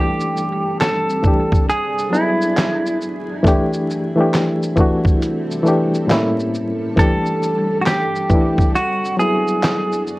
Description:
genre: lo-fi hip hop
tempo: 68 BPM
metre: 4/4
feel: swing 64% on 16ths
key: A dorian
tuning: A4 = 441 Hz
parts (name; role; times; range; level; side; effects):
- semi-hollow electric guitar; melody; 0.0-10.0 s; E4 to A4; -20 LUFS; right 1 dB; low-pass filter, tape echo
- barky reed electric piano; accompaniment; 0.0-10.2 s; A2 to G#4; -19 LUFS; left 1 dB; fast tremolo, cassette tape, low-pass filter
- granular cloud pad; sustained chords; 0.0-10.2 s; F#3 to A4; -27 LUFS; right 1 dB; built-in reverb, low-pass filter
- dusty soul sampler-style drum kit; drums; 0.2-10.2 s; handclaps, hi-hat, kick drum, shaker, snare drum; -18 LUFS; equal; none
room: moderate studio reverb, RT60 0.5 s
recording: worn, warbling old tape, cassette tape, vinyl crackle, warbly pitch drift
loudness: -15 LUFS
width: side -20 dB against mid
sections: 0.0-10.2 A section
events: none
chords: 0.0 D7sus4; 1.7 E9; 3.4 Am7; 6.1 A7b9; 7.0 D7sus4; 8.7 E9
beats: 0.80 1.68 2.56 | 3.44 4.33 5.21 6.09 | 6.97 7.86 8.74 9.62

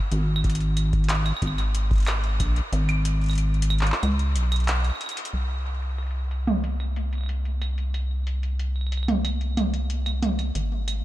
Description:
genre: IDM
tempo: 92 BPM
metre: 4/4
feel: straight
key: unclear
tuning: A4 = 440 Hz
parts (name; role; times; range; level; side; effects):
- rubbery square bass; bass; 0.1-11.0 s; Ab1 to Db2; -24 LUFS; equal; none
- electro analog drum machine; drums; 0.1-11.0 s; claves, handclaps, hi-hat, toms; -29 LUFS; right 1 dB; low-pass filter on hats, low-pass filter on perc, low-pass filter on snare, low-pass filter on toms, low-pass filter on room, ping-pong delay
- electronic kick drum; drums; 0.4-2.5 s; none; -24 LUFS; equal; none
room: little or no reverb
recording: none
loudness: -22 LUFS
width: side -15 dB against mid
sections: 0.0-5.3 A section; 5.3-11.0 B section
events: kick drops out 2.7-5.3; drum fill 5.0-5.3; filter sweep on drum 5.3-11.0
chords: none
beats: | 0.12 0.77 1.42 2.07 | 2.73 3.38 4.03 4.68 | 5.33 5.99 6.64 7.29 | 7.94 8.60 9.25 9.90 | 10.55

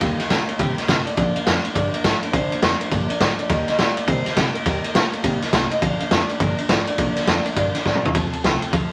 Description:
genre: rockabilly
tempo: 207 BPM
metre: 4/4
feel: swing 63% on 8ths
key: Bb mixolydian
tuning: A4 = 440 Hz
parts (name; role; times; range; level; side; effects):
- electric guitar through a small old amp; melody; 0.0-8.9 s; Bb4 to A5; -31 LUFS; equal; none
- picked steel-string acoustic guitar; accompaniment; 0.0-8.9 s; Bb2 to Bb4; -28 LUFS; equal; none
- upright bass; bass; 0.0-8.9 s; F1 to C3; -31 LUFS; equal; none
- raw garage drum kit; drums; 0.0-8.8 s; kick drum, ride cymbal, snare drum, toms; -22 LUFS; equal; none
room: moderate studio reverb, RT60 0.7 s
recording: vinyl crackle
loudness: -21 LUFS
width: mono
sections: 0.0-8.9 A section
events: drum fill 7.9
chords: 0.0 Eb; 1.2 Bb; 3.5 Eb; 5.8 Bb; 8.1 F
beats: | 0.01 0.30 0.59 0.88 | 1.17 1.46 1.75 2.04 | 2.33 2.62 2.92 3.21 | 3.50 3.79 4.08 4.37 | 4.66 4.95 5.24 5.53 | 5.82 6.11 6.40 6.69 | 6.98 7.27 7.57 7.86 | 8.15 8.44 8.73

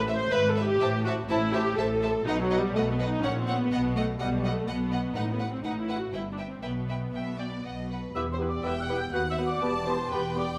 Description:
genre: quick classical-period movement for symphony orchestra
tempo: 123 BPM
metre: 3/4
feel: straight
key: E minor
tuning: A4 = 441 Hz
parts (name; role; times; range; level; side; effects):
- warm symphonic viola section; accompaniment; 0.0-10.4 s; F#3 to C5; -32 LUFS; equal; none
- rich symphonic cello section; bass; 0.0-10.5 s; D#2 to B2; -36 LUFS; equal; none
- warm chamber double bass section; bass; 0.0-10.5 s; E1 to D#2; -36 LUFS; equal; none
- rich chamber violin section; melody; 0.1-10.6 s; B4 to A5; -41 LUFS; equal; none
- rich chamber violin section; second line; 0.1-10.6 s; B4 to A5; -38 LUFS; equal; none
- hollow small flute group; second line; 8.1-10.6 s; B5 to G6; -36 LUFS; equal; none
- clear clarinet; second line; 8.2-10.5 s; F#4 to G4; -38 LUFS; equal; none
- warm bassoon; accompaniment; 8.2-10.5 s; B3; -38 LUFS; equal; none
- mellow French horn section; sustained chords; 8.2-10.6 s; B3 to G4; -38 LUFS; equal; none
room: moderate scoring stage reverb, RT60 1.6 s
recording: none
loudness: -28 LUFS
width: mono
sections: 0.0-8.1 A section; 8.1-10.6 A section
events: none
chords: 0.3 E/G#; 0.8 Am; 2.3 B; 3.2 F#/A#; 3.7 B; 5.2 B5/A; 6.1 Em/G; 6.6 Em/B; 8.1 Em; 9.1 B/D#; 9.6 Em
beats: 0.32 | 0.81 1.29 1.78 | 2.26 2.75 3.23 | 3.71 4.20 4.68 | 5.16 5.64 6.13 | 6.63 7.14 7.64 | 8.14 8.64 9.13 | 9.62 10.11

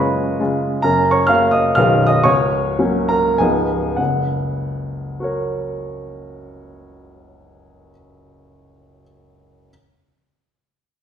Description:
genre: classical, romantic triple-time dance for piano with dotted rhythms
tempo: 94-141 BPM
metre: 3/4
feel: rubato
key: F# major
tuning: A4 = 437 Hz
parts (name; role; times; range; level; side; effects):
- clear baby grand piano; solo; 0.0-9.7 s; B0 to E#6; -16 LUFS; equal; none
room: wet recital hall reverb, RT60 1.3 s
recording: heard from further back in the room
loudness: -15 LUFS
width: side -8 dB against mid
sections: 0.0-4.0 A section; 4.0-7.5 B section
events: slowing down 0.2-4.0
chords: 0.0 C#7/F#; 0.8 F#; 1.8 G#m/B; 2.3 F#/C#; 3.4 C#9; 4.0 F#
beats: 0.40 | 0.84 1.29 1.77 | 2.26 2.80 3.40 | 3.99 4.58 5.20 | 5.78 6.38 6.98

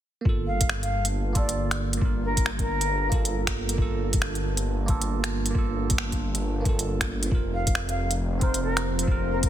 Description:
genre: future garage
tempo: 136 BPM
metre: 4/4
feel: swing 61% on 16ths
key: G minor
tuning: A4 = 439 Hz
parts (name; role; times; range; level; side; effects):
- bell-like tine electric piano; accompaniment; 0.2-9.5 s; Bb3 to Bb4; -32 LUFS; right 6 dB; phaser, sidechain pumping, tape echo
- swelling detuned saw bass; bass; 0.3-9.5 s; F1 to G1; -28 LUFS; equal; tube saturation, sidechain pumping
- electronic kick drum; drums; 0.3-9.5 s; none; -25 LUFS; equal; studio reverb
- mellow jazz flute; melody; 0.5-3.2, 7.5-9.5 s; Bb4 to F5; -31 LUFS; left 1 dB; ping-pong delay
- organic electronic drum kit; drums; 0.6-9.5 s; finger snaps, hi-hat; -29 LUFS; equal; studio reverb, soft clipping on snare
- ethereal airy pad; sustained chords; 7.9-9.5 s; F3 to F5; -32 LUFS; left 1 dB; ensemble chorus, built-in reverb, phaser, sidechain pumping
room: digital ambience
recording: dense, heavily limited modern master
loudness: -23 LUFS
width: side -11 dB against mid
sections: 0.3-9.5 A section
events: none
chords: 0.3 Gm7; 7.3 Fsus4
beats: | 0.25 0.69 1.14 1.58 | 2.02 2.46 2.90 3.34 | 3.78 4.22 4.67 5.11 | 5.55 5.99 6.43 6.87 | 7.31 7.75 8.19 8.63 | 9.08

